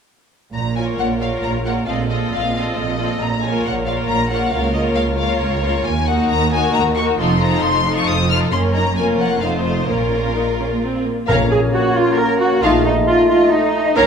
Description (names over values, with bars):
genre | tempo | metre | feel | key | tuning
quick classical-period movement for symphony orchestra | 134 BPM | 3/4 | straight | Bb minor | A4 = 440 Hz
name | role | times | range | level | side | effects
rich symphonic violin section | melody | 0.5-14.1 s | Bb4 to F6 | -23 LUFS | left 4 dB | none
rich studio double bass section | bass | 0.5-14.1 s | F1 to Eb2 | -24 LUFS | right 3 dB | none
warm chamber cello section | bass | 0.5-14.0 s | Db2 to Bb4 | -21 LUFS | right 2 dB | none
rich studio violin section | second line | 0.8-14.1 s | Db4 to F5 | -23 LUFS | left 4 dB | none
rich chamber viola section | accompaniment | 0.8-14.1 s | F3 to F4 | -22 LUFS | equal | none
mellow cor anglais | second line | 11.3-14.1 s | Eb4 to Bb4 | -23 LUFS | right 2 dB | none
silver concert flute | second line | 11.3-14.1 s | Db5 to Eb5 | -24 LUFS | left 3 dB | none
warm clarinet | second line | 11.3-14.1 s | Eb4 to Bb4 | -22 LUFS | left 2 dB | none
warm bassoon | accompaniment | 11.3-14.1 s | A3 to Bb3 | -21 LUFS | right 3 dB | none
dark French horn section | sustained chords | 11.3-14.1 s | A3 to Eb4 | -23 LUFS | left 4 dB | none
timpani | percussion | 11.3-11.9 s | Bb2 | -24 LUFS | left 4 dB | none
room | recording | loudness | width
moderate scoring stage reverb, RT60 1.7 s | minimal, uncompressed stereo recording | -15 LUFS | side -6 dB against mid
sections
0.5-11.3 A section; 11.3-14.1 B section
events
none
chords
0.5 Bbm; 1.9 F7/Bb; 3.2 Bbm; 4.5 Bbm/Db; 5.8 Ebm; 7.2 F7; 8.5 Gb; 9.0 Bbm/F; 9.4 F7; 9.9 Bbm; 12.6 F7/Bb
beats
| 0.54 0.99 1.43 | 1.88 2.33 2.77 | 3.21 3.65 4.09 | 4.53 4.97 5.41 | 5.85 6.29 6.74 | 7.19 7.63 8.08 | 8.52 8.97 9.42 | 9.88 10.35 10.82 | 11.28 11.73 12.18 | 12.63 13.08 13.52 | 13.97